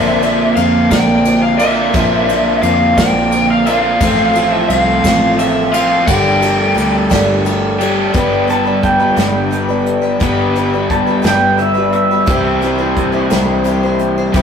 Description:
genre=folk rock and heartland rock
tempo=58 BPM (dotted quarters)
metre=6/8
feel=straight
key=unclear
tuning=A4 = 439 Hz
part: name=lead guitar through a small cranked amp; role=melody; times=0.0-7.8 s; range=E5 to G5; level=-16 LUFS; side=left 3 dB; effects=overdrive
part: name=picked twelve-string acoustic guitar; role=accompaniment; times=0.0-14.4 s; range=G2 to C5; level=-18 LUFS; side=left 1 dB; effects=none
part: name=raw garage guitar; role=riff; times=0.0-14.4 s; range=G2 to G4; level=-15 LUFS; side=right 1 dB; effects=overdrive
part: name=fingered electric bass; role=bass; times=0.0-14.4 s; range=G1 to F2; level=-21 LUFS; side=equal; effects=none
part: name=soft brush drum kit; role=drums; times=0.2-14.4 s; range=hi-hat, kick drum, ride cymbal, snare drum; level=-20 LUFS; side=equal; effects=none
part: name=pedal steel guitar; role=second line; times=8.5-13.3 s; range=E5 to A5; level=-17 LUFS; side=right 1 dB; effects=slapback echo
room=wet stone room reverb, RT60 1.2 s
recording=rough rehearsal-room recording, warm saturation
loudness=-11 LUFS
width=side -7 dB against mid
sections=0.0-8.1 A section; 8.1-14.4 B section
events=pedal steel guitar solo 8.1-14.4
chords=0.0 Bbadd9; 4.0 F/A; 6.1 Gsus2; 8.1 G; 12.3 C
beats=0.91 | 1.94 2.97 | 4.00 5.03 | 6.07 7.10 | 8.13 9.17 | 10.20 11.24 | 12.27 13.31 | 14.34

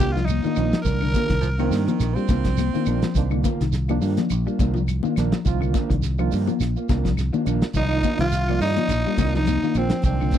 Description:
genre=afrobeat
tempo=104 BPM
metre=4/4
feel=swing 55% on 16ths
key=C minor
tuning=A4 = 440 Hz
part: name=raspy tenor saxophone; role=melody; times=0.0-2.0, 7.8-10.4 s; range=C4 to Bb4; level=-27 LUFS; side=equal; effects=none
part: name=breathy alto saxophone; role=second line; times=0.0-2.0, 7.8-10.4 s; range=C4 to Bb4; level=-30 LUFS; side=right 7 dB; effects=none
part: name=clean electric guitar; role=arpeggios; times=0.0-10.4 s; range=D3 to G3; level=-28 LUFS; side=left 6 dB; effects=wide subtle chorus
part: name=mellow electric guitar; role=stabs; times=0.0-10.4 s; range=Eb3 to F4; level=-30 LUFS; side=right 7 dB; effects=spring reverb
part: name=fingered electric bass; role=bass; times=0.0-10.3 s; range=Bb1 to G2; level=-23 LUFS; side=equal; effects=none
part: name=congas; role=percussion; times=0.0-10.4 s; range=none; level=-28 LUFS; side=left 18 dB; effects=none
part: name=shekere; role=percussion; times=0.0-10.4 s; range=none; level=-34 LUFS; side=right 7 dB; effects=none
part: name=warm soul drum kit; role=drums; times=0.2-10.4 s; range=hi-hat, kick drum, snare drum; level=-24 LUFS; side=equal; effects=none
part: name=claves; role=percussion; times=0.3-10.3 s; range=none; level=-41 LUFS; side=left 26 dB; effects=none
part: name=barky reed electric piano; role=accompaniment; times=0.6-10.3 s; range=Eb3 to D5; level=-30 LUFS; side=right 14 dB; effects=fast tremolo
part: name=warm baritone saxophone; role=second line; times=1.4-3.3 s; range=Eb3 to C4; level=-30 LUFS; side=right 12 dB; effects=none
room=little or no reverb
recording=dry, close 1970s-style studio recording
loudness=-19 LUFS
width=side -10 dB against mid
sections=0.0-10.4 A section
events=none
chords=0.0 Cm11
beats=0.29 | 0.86 1.44 2.01 2.58 | 3.16 3.73 4.31 4.88 | 5.46 6.03 6.61 7.18 | 7.75 8.33 8.90 9.48 | 10.05

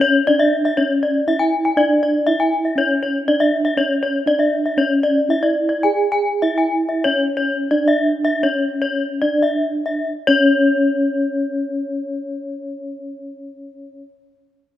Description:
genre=gamelan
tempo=66-120 BPM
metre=4/4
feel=straight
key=unclear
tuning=A4 = 441 Hz
part: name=gamelan-type bronze metallophone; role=melody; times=0.0-14.0 s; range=C#4 to G#4-30c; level=-19 LUFS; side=equal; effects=none
part: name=gamelan-type bronze metallophone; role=arpeggios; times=0.0-14.0 s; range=C#5 to G#5-30c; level=-19 LUFS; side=left 2 dB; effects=none
room=moderate lush hall reverb, RT60 2.3 s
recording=rough home demo mix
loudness=-16 LUFS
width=side -12 dB against mid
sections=0.0-10.1 A section; 10.1-14.8 B section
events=slowing down 4.8-10.1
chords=none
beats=0.27 | 0.77 1.27 1.77 2.27 | 2.77 3.27 3.77 4.27 | 4.77 5.29 5.83 6.41 | 7.04 7.71 8.43 9.22 | 10.09 11.00 11.90 12.81 | 13.72

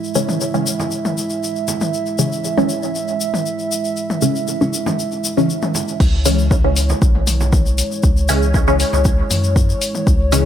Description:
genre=dub techno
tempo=118 BPM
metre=4/4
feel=straight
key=C# minor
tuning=A4 = 440 Hz
part: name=dark analog pad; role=sustained chords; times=0.0-10.5 s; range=G#3 to E5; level=-23 LUFS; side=right 3 dB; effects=chorus, sidechain pumping
part: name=tube shaker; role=percussion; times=0.0-10.4 s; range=none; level=-26 LUFS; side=left 5 dB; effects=none
part: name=filtered dub chord stab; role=stabs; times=0.2-10.5 s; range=C#3 to C#4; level=-20 LUFS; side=left 1 dB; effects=phaser, sidechain pumping, dub echo
part: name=electronic toms and congas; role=percussion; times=0.3-10.0 s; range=none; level=-26 LUFS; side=left 1 dB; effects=sidechain pumping on toms, sidechain pumping on perc, dub echo
part: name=pure sine sub bass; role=bass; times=6.0-10.5 s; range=B1 to F#2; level=-17 LUFS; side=equal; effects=sidechain pumping
part: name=deep house drum kit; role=drums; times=6.0-10.4 s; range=crash cymbal, hi-hat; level=-25 LUFS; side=left 1 dB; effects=low-pass filter on cymbals, low-pass filter on hats, low-pass filter on room
part: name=electronic kick drum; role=drums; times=6.0-10.2 s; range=none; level=-15 LUFS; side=equal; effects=none
room=light reverb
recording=none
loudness=-15 LUFS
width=side -10 dB against mid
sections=0.0-6.0 A section; 6.0-10.5 B section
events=none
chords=0.0 C#m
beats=0.41 0.92 1.43 | 1.93 2.44 2.95 3.46 | 3.97 4.48 4.99 5.49 | 6.00 6.51 7.02 7.53 | 8.04 8.54 9.05 9.56 | 10.07

